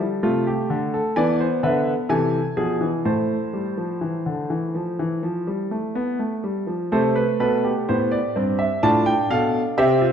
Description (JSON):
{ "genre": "classical, baroque-style 4-part fugue for grand piano", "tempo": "63 BPM", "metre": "4/4", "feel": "straight", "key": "A minor", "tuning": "A4 = 440 Hz", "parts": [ { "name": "warm grand piano", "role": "solo", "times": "0.0-10.1 s", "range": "G2 to A5", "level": "-19 LUFS", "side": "equal", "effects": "none" } ], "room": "wet recital hall reverb, RT60 1.5 s", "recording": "dark, warm production", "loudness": "-20 LUFS", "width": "side -8 dB against mid", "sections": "0.0-6.9 A section; 6.9-10.1 B section", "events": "none", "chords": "0.0 Dm; 1.2 E7; 3.0 Am; 8.8 Dm/A", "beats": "0.22 1.16 2.09 | 3.05 4.02 4.99 5.95 | 6.91 7.87 8.81 9.77" }